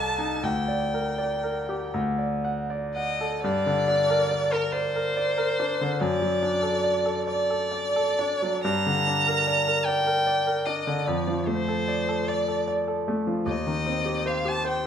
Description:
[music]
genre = classical, romantic duo for violin and grand piano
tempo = 39-51 BPM (dotted quarters)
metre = 6/8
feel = rubato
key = G minor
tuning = A4 = 435 Hz
[part]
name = rich violin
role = melody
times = 0.0-14.9 s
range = Bb4 to Bb5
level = -26 LUFS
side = left 1 dB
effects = none
[part]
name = clear concert grand piano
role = accompaniment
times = 0.0-14.9 s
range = C2 to F#5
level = -26 LUFS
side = equal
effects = none
[sound]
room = moderate recital hall reverb, RT60 1.2 s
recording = close, detailed microphones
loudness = -23 LUFS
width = side -8 dB against mid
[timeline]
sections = 0.0-3.4 A section; 3.4-14.9 B section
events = none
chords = 0.4 Gm/D; 1.9 D; 3.4 Gm; 6.0 D/F#; 8.6 Gm; 11.1 Dm/F; 13.5 Cm/Eb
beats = | 0.44 1.94 | 3.43 4.73 | 6.01 7.26 | 8.64 9.86 | 11.06 12.27 | 13.47 14.66

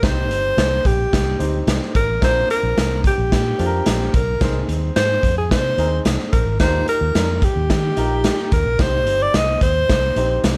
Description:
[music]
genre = uptempo 1960s-style soul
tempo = 110 BPM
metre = 4/4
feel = straight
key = unclear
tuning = A4 = 440 Hz
[part]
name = breathy alto saxophone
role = melody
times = 0.0-10.4 s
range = G4 to Eb5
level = -23 LUFS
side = equal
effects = none
[part]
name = warm upright piano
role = accompaniment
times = 0.0-10.6 s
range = C4 to C5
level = -29 LUFS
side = equal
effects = plate reverb
[part]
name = vintage muted fingered electric bass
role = bass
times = 0.0-10.5 s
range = G1 to Eb3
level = -24 LUFS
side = equal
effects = none
[part]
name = raw garage drum kit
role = drums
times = 0.0-10.6 s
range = hi-hat, kick drum, snare drum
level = -23 LUFS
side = equal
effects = none
[sound]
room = light reverb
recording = none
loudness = -18 LUFS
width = mono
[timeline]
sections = 0.0-10.6 A section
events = none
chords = 0.0 Cm; 2.2 Bbadd9; 4.4 Ab/C; 6.6 Ebadd9; 8.8 Cm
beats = | 0.03 0.58 1.13 1.67 | 2.22 2.77 3.32 3.86 | 4.41 4.96 5.51 6.05 | 6.60 7.15 7.70 8.25 | 8.80 9.35 9.89 10.44

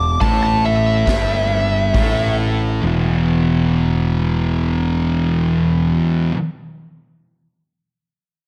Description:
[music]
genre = stoner and doom metal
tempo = 67 BPM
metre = 4/4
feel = straight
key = E minor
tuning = A4 = 440 Hz
[part]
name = fuzz lead guitar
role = melody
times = 0.0-2.4 s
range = E5 to D6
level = -22 LUFS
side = equal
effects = distortion, analog delay
[part]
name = thick fuzz guitar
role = riff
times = 0.0-6.4 s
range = E2 to A3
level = -23 LUFS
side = equal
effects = distortion
[part]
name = thick fuzz guitar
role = riff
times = 0.0-6.3 s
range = E2 to A3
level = -22 LUFS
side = equal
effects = distortion
[part]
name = growling picked electric bass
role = bass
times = 0.0-6.0 s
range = E1 to A1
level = -24 LUFS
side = equal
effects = overdrive, tube saturation
[part]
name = raw garage drum kit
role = drums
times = 0.2-2.2 s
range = hi-hat, kick drum, snare drum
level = -25 LUFS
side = equal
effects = none
[sound]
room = light reverb, studio reverb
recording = dark, warm production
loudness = -17 LUFS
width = mono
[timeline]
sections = 0.0-2.8 A section; 2.8-6.4 B section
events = slowing down 0.0-2.8; lead electric guitar solo 0.0-2.8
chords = 0.0 Em; 2.8 E5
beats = 0.21 1.07 1.94 | 2.83 3.73 4.63 5.53

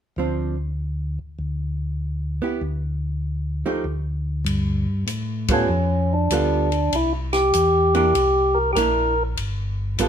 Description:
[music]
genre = soul jazz organ trio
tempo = 98 BPM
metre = 4/4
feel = swing 66% on 8ths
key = unclear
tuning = A4 = 439 Hz
[part]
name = archtop guitar, miked and amplified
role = accompaniment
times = 0.2-10.1 s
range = F3 to A4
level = -24 LUFS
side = right 4 dB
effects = none
[part]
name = mellow tonewheel organ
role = bass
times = 0.2-10.1 s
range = G1 to A2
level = -24 LUFS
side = left 1 dB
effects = slow rotary speaker
[part]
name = compact cocktail drum kit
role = drums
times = 4.5-10.1 s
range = hi-hat, kick drum, ride cymbal, snare drum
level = -30 LUFS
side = left 1 dB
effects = none
[part]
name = percussive tonewheel organ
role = melody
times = 5.5-9.2 s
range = C#4 to Bb4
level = -19 LUFS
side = equal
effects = overdrive, stopped rotary speaker
[sound]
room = moderate studio reverb, RT60 0.9 s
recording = minimal, uncompressed stereo recording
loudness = -20 LUFS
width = side -8 dB against mid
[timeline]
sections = 0.0-4.5 A section; 4.5-10.1 B section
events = band accent 5.4-5.7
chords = 0.0 Dm7; 0.8 N.C.; 2.0 G6/D; 3.2 F9; 4.5 G9; 6.9 C9; 9.4 Gsus2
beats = 0.17 0.78 1.40 | 2.01 2.63 3.24 3.85 | 4.47 5.08 5.70 6.31 | 6.92 7.54 8.15 8.76 | 9.38 9.99

